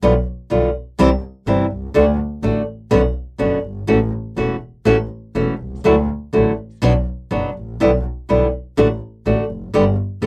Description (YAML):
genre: tango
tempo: 124 BPM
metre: 4/4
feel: rubato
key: D major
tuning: A4 = 440 Hz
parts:
  - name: flamenco guitar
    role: accompaniment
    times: 0.0-10.3 s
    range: B2 to G4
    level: -18 LUFS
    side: equal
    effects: none
  - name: clear double bass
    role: bass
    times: 0.0-10.3 s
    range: E1 to D2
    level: -23 LUFS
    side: equal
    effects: none
room: little or no reverb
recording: dry, close 1970s-style studio recording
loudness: -19 LUFS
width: mono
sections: 0.0-10.3 A section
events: none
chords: 0.0 G7/B; 1.0 C; 2.0 D; 2.9 Bmadd9; 3.9 A6; 5.9 Dadd9; 6.8 Bm; 7.8 G6/B; 8.8 D/A; 9.7 G